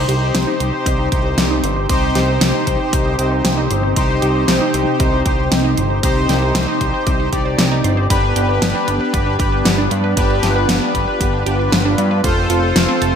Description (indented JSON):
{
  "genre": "synthwave",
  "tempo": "116 BPM",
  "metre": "4/4",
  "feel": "straight",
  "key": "C dorian",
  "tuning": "A4 = 440 Hz",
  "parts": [
    { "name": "phased analog pad", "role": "sustained chords", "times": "0.0-13.2 s", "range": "C3 to G4", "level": "-22 LUFS", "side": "equal", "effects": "phaser, chorus, sidechain pumping" },
    { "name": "analog synth brass", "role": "stabs", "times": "0.0-13.2 s", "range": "D4 to D5", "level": "-20 LUFS", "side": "left 2 dB", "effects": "chorus, ping-pong delay" },
    { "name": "fat analog bass", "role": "bass", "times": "0.0-13.1 s", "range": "F1 to G2", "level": "-19 LUFS", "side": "equal", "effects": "none" },
    { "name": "wide unison pluck", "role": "arpeggios", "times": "0.1-13.1 s", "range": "A3 to C6", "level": "-24 LUFS", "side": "right 3 dB", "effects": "ping-pong delay" },
    { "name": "pop drum kit", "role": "drums", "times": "0.1-13.1 s", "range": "hi-hat, snare drum", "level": "-19 LUFS", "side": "equal", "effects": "small room reverb, gated reverb" },
    { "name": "electronic kick drum", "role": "drums", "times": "0.9-12.3 s", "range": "none", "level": "-20 LUFS", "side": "equal", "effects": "small room reverb" }
  ],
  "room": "light reverb, digital ambience",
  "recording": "bright 1980s-style digital production",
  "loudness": "-14 LUFS",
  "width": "side -7 dB against mid",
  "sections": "0.0-13.2 A section",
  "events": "none",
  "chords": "0.0 Cm; 8.1 G; 12.2 F"
}